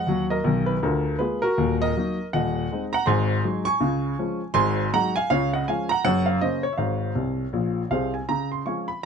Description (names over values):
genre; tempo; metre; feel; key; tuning
jazz, stride piano; 161 BPM; 4/4; swing 61% on 8ths; Db major; A4 = 440 Hz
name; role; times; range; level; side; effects
warm baby grand piano; solo; 0.0-9.0 s; D#1 to Db6; -21 LUFS; equal; none
room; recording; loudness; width
moderate booth ambience, RT60 0.2 s; dark, warm production; -21 LUFS; side -6 dB against mid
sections
0.0-8.3 A section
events
grand piano fill 7.2-8.3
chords
0.0 D#m; 0.8 A#7/D; 1.6 D#m; 2.3 Ab7/Eb; 3.1 Ab7; 3.8 Db; 4.6 Ab7; 5.3 Db; 6.1 Gb; 6.8 Db/Ab; 7.5 Ab; 8.3 Db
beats
0.08 0.46 | 0.83 1.20 1.57 1.95 | 2.32 2.70 3.07 3.44 | 3.81 4.19 4.56 4.93 | 5.31 5.68 6.05 6.43 | 6.80 7.17 7.54 7.92 | 8.29 8.66